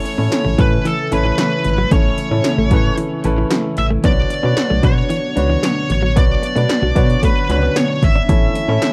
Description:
1980s-style pop; 113 BPM; 4/4; straight; A major; A4 = 440 Hz
high-gain lead guitar; melody; 0.0-8.9 s; A4 to E5; -24 LUFS; equal; distortion
clear baby grand piano; accompaniment; 0.0-8.9 s; C#4 to D5; -24 LUFS; equal
string machine, cellos; sustained chords; 0.0-8.9 s; C#3 to G#5; -27 LUFS; equal; ensemble chorus
direct-recorded clean electric guitar; riff; 0.1-8.8 s; E3 to D4; -27 LUFS; equal; lush chorus
80s electronic pad drums; drums; 0.1-8.9 s; hi-hat, kick drum, snare drum; -20 LUFS; equal
solid FM bass; bass; 0.2-8.8 s; G#1 to B2; -20 LUFS; equal
light reverb; dry, close 1970s-style studio recording; -16 LUFS; mono
0.0-8.9 A section
0.0 A; 4.0 Bmadd9; 8.3 A

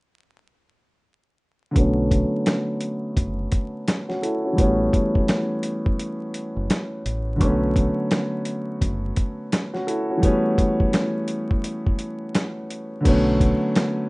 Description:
hip hop, boom-bap hip-hop; 85 BPM; 4/4; swing 61% on 16ths; B minor; A4 = 441 Hz
dark baby grand piano; accompaniment; 1.7-14.1 s; D3 to A4; -22 LUFS; equal; cassette tape, high-pass filter, low-pass filter, plate reverb
deep dub fingered electric bass; bass; 1.8-13.5 s; F#1 to B1; -25 LUFS; equal
dusty soul sampler-style drum kit; drums; 1.8-14.0 s; crash cymbal, hi-hat, kick drum, snare drum; -22 LUFS; equal
moderate studio reverb, RT60 0.6 s; rough home demo mix, vinyl crackle, nothing above 10.4 kHz; -20 LUFS; side -24 dB against mid
1.8-13.1 A section; 13.1-14.1 B section
filter sweep on grand piano 1.8-13.1
1.8 Bm7; 4.6 A7; 7.4 Bm7; 10.2 A7; 13.1 Bm7

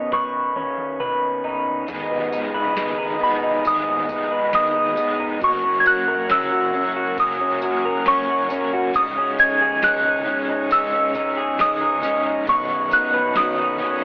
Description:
dream pop; 68 BPM; 4/4; straight; G# minor; A4 = 439 Hz
soft synth bell; melody; 0.0-14.0 s; B5 to G#6; -19 LUFS; equal; chorus, tape echo
pipe organ, principal chorus; sustained chords; 0.0-14.0 s; D#3 to G#5; -27 LUFS; equal
electric guitar through a small old amp; arpeggios; 0.0-14.0 s; G#2 to B4; -23 LUFS; equal; wide subtle chorus, tape echo
round analog bass; bass; 0.0-14.0 s; E1 to D#2; -46 LUFS; equal
soft vintage rhythm box; drums; 0.1-14.0 s; kick drum, snare drum, tambourine, toms; -31 LUFS; equal
crunchy overdriven guitar; accompaniment; 1.9-14.0 s; F#2 to D#4; -29 LUFS; equal; tremolo, ensemble chorus
light reverb; dry, gritty hardware recording, telephone sound; -17 LUFS; side -28 dB against mid
0.0-1.9 A section; 1.9-14.0 B section
drum fill 0.1-1.9
0.0 Badd9; 1.9 G#m; 5.4 F#; 8.9 C#sus2; 12.5 Badd9

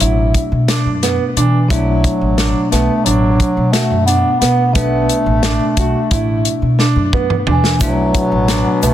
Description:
progressive instrumental, band music in an uneven meter; 177 BPM (eighths); 9/8; straight; B minor; A4 = 439 Hz
mellow bass clarinet; melody; 0.0-8.9 s; E3 to B3; -18 LUFS; equal; ping-pong delay
bell-like tine electric piano; accompaniment; 0.0-8.9 s; B2 to D4; -22 LUFS; left 3 dB; fast stereo tremolo
warm baby grand piano; arpeggios; 0.0-8.9 s; B3 to F#4; -20 LUFS; right 4 dB; ping-pong delay
upright bass; bass; 0.0-8.9 s; A1 to B2; -17 LUFS; equal
warm soul drum kit; drums; 0.0-8.9 s; hi-hat, kick drum, snare drum, toms; -18 LUFS; left 1 dB
bright trombone; second line; 7.8-8.9 s; B2; -22 LUFS; left 4 dB
egg shaker; percussion; 7.8-8.9 s; -31 LUFS; right 6 dB
light reverb, studio ambience; dense, heavily limited modern master; -12 LUFS; side -12 dB against mid
0.0-8.9 A section
drum fill 6.8-7.8
0.0 Bm7

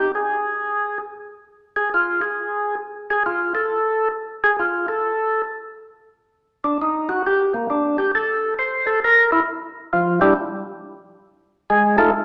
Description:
jazz; 135 BPM; 4/4; swing 67% on 8ths; A4 = 440 Hz
percussive tonewheel organ; solo; 0.0-12.1 s; F3 to C5; -20 LUFS; equal; slow rotary speaker
wet large studio reverb, RT60 1.5 s; -20 LUFS; mono
0.0-12.2 A section
tonewheel organ solo 0.0-12.2
0.0 N.C.; 7.2 Fmaj13; 10.8 F7

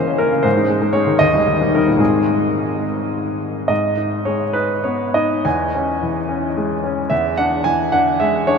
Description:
classical, romantic character piece for solo piano; 63-83 BPM (dotted quarters); 6/8; rubato; Ab major, G# minor from 3.7 s; A4 = 439 Hz
clear baby grand piano; solo; 0.0-8.6 s; Eb2 to G#5; -15 LUFS; equal
wet huge ambient reverb, RT60 7.2 s; in a vast, echoing space; -15 LUFS; side -6 dB against mid
0.0-3.7 A section; 3.7-8.6 B section
0.5 Ab; 1.2 Eb; 2.0 Ab; 3.7 G#m; 5.5 C#m/E; 7.1 E7

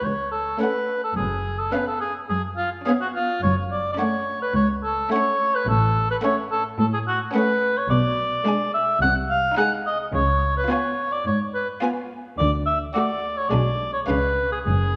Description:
cinematic, playful, whimsical film cue; 107 BPM; 4/4; straight; F# minor; A4 = 440 Hz
warm cor anglais; second line; 0.0-15.0 s; E#4 to F#5; -25 LUFS; equal
rich studio cello section; bass; 0.0-15.0 s; C#2 to D3; -28 LUFS; equal
rich studio violin section; melody; 0.6-14.5 s; E#5 to G#5; -37 LUFS; equal
rich studio violin section; second line; 0.6-14.5 s; C#4 to F#4; -35 LUFS; equal
rich studio viola section; accompaniment; 0.6-14.5 s; G#3 to B3; -30 LUFS; equal
dark studio double bass section; bass; 1.2-15.0 s; F#1 to D2; -29 LUFS; equal
moderate scoring stage reverb, RT60 1.9 s; -23 LUFS; mono
0.0-15.0 A section
0.0 F#m; 1.2 C#7/F#; 3.4 F#m; 5.7 F#m/A; 7.9 G#dim/B; 9.0 G#/B#; 10.1 C#7; 12.4 D; 13.5 G#dim/B; 14.1 C#7

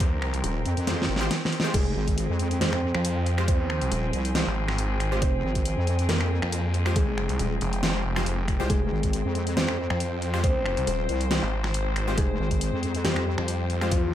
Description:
heavy wobble dubstep; 138 BPM; 4/4; swing 54% on 16ths, half-time; F minor; A4 = 440 Hz
rich chamber string section; sustained chords; 0.0-14.1 s; F3 to G5; -34 LUFS; left 1 dB; sidechain pumping, low-pass filter
snarling distorted saw bass; bass; 0.0-14.1 s; F1 to F2; -27 LUFS; equal; distortion, overdrive
big-room dance drum kit; drums; 0.0-14.0 s; crash cymbal, finger snaps, hi-hat, snare drum; -30 LUFS; equal; small room ambience
electronic kick drum; drums; 0.0-14.0 s; -25 LUFS; equal; overdrive, small room ambience
wobble bass; bass; 0.4-13.4 s; Eb1 to F2; -27 LUFS; equal; chorus, overdrive
supersaw stab; stabs; 0.9-13.9 s; Ab3 to C5; -34 LUFS; left 2 dB; ping-pong delay
felt-muted upright piano; melody; 1.7-14.1 s; F3 to C5; -32 LUFS; left 1 dB; ping-pong delay
digital ambience; -23 LUFS; side -11 dB against mid
0.0-14.1 A section
drum fill 0.9-1.7
0.0 Fmadd9

